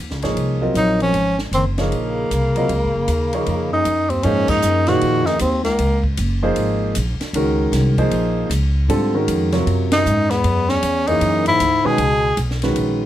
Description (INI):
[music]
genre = modal jazz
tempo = 155 BPM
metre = 4/4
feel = swing 64% on 8ths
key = Ab mixolydian from 4.2 s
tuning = A4 = 440 Hz
[part]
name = upright bass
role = bass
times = 0.0-13.1 s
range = Gb1 to Ab2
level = -21 LUFS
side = equal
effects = none
[part]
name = compact cocktail drum kit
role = drums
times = 0.1-12.9 s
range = crash cymbal, hi-hat, kick drum, ride cymbal, snare drum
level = -29 LUFS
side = equal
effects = none
[part]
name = warm grand piano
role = accompaniment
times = 0.2-13.1 s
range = C3 to Eb5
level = -20 LUFS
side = right 1 dB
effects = none
[part]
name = breathy tenor saxophone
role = melody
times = 0.8-6.0, 9.9-12.4 s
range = Bb3 to Ab4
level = -18 LUFS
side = equal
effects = none
[part]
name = mellow bass clarinet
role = second line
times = 0.8-6.0, 9.9-12.4 s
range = Db2 to Gb3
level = -24 LUFS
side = left 4 dB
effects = none
[sound]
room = light reverb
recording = none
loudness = -16 LUFS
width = side -12 dB against mid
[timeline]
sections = 0.0-4.2 A section; 4.2-13.1 B section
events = band accent 4.4, 9.9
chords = 0.0 Ab13sus4; 4.2 Ab9sus4; 10.4 Gb9sus4